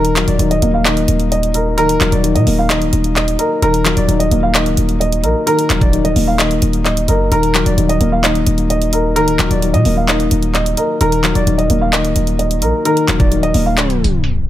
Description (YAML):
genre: hip hop, trap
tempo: 130 BPM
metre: 4/4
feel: half-time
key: Eb harmonic minor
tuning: A4 = 438 Hz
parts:
  - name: dark concert grand piano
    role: melody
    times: 0.0-14.5 s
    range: Bb4 to F5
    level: -18 LUFS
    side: right 2 dB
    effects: none
  - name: felt-muted upright piano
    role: accompaniment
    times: 0.0-14.5 s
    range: Eb3 to Eb5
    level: -17 LUFS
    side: left 4 dB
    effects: none
  - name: hard-hitting 808-style bass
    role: bass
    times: 0.0-14.5 s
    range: D1 to Bb2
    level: -16 LUFS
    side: equal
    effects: none
  - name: trap drum kit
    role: drums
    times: 0.0-14.5 s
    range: handclaps, hi-hat, kick drum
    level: -18 LUFS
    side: equal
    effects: none
room: small room ambience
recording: tape stop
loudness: -12 LUFS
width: side -13 dB against mid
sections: 0.0-14.5 A section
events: tape stop 13.8-14.5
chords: 0.0 Ebm